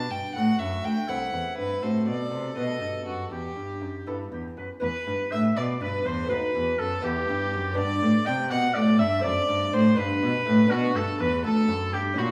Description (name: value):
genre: classical, baroque-style sonata movement with continuo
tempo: 81 BPM (dotted quarters)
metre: 6/8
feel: straight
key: E minor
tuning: A4 = 441 Hz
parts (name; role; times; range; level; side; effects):
- clear oboe; melody; 0.0-12.3 s; E4 to G5; -32 LUFS; equal; none
- warm violin; second line; 0.0-12.3 s; F#4 to A5; -33 LUFS; equal; none
- lute; accompaniment; 0.0-12.3 s; D2 to G4; -35 LUFS; equal; none
- rich cello; bass; 0.0-12.3 s; C2 to C3; -28 LUFS; equal; none
room: wet recital hall reverb, RT60 1.5 s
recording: small room ambience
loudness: -26 LUFS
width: mono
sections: 0.0-4.8 A section; 4.8-12.3 B section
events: none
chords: 0.3 Am; 1.8 F#dim/A; 2.6 B7; 3.3 Em; 6.3 B7/D#; 7.0 Em; 7.8 G; 9.2 D7/F#; 10.0 G; 10.7 Bm